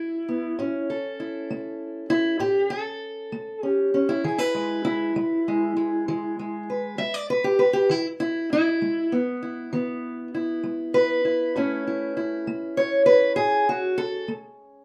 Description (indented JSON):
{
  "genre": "acoustic country blues, solo or duo",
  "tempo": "66 BPM (dotted quarters)",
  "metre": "12/8",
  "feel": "straight",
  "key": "E major",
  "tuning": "A4 = 441 Hz",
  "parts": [
    { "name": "fingerpicked steel-string acoustic guitar", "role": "solo", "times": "0.0-14.8 s", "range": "A2 to E5", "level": "-24 LUFS", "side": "equal", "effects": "none" }
  ],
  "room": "moderate studio ambience, RT60 0.5 s",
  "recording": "none",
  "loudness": "-24 LUFS",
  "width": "mono",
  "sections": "0.0-14.8 A section",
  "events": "steel-string acoustic guitar solo 0.0-14.8",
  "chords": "0.0 E; 0.6 A; 4.2 E; 11.6 A"
}